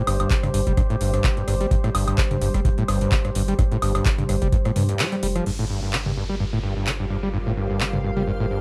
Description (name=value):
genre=acid house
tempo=128 BPM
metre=4/4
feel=swing 55% on 16ths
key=G minor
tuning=A4 = 440 Hz
part: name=warm analog pad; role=sustained chords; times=0.0-8.6 s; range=G3 to C5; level=-32 LUFS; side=equal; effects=chorus, vintage 12-bit sampler grit, sidechain pumping
part: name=overdriven acid bass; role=riff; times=0.0-8.6 s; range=G2 to G3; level=-27 LUFS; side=equal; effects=subtle chorus, cassette tape, digital delay
part: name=saturated sub bass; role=bass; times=0.1-8.6 s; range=F1 to G2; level=-30 LUFS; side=equal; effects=sidechain pumping
part: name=booming analog drum machine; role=drums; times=0.1-8.3 s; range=crash cymbal, handclaps, hi-hat, rim click, toms, woodblock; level=-29 LUFS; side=equal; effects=overdrive
part: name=electronic kick drum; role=drums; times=0.3-4.6 s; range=none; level=-24 LUFS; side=equal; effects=overdrive
part: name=downlifter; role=sound effects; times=5.5-8.6 s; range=none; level=-41 LUFS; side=equal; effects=none
part: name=granular cloud pad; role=texture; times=6.1-8.6 s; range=G4 to F5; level=-35 LUFS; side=equal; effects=built-in reverb, sidechain pumping
room=moderate studio reverb, RT60 0.6 s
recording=none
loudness=-22 LUFS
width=mono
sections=0.0-5.5 A section; 5.5-8.6 B section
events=break 5.0-5.5; band accent 5.0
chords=0.0 G7(no3); 5.5 Gm7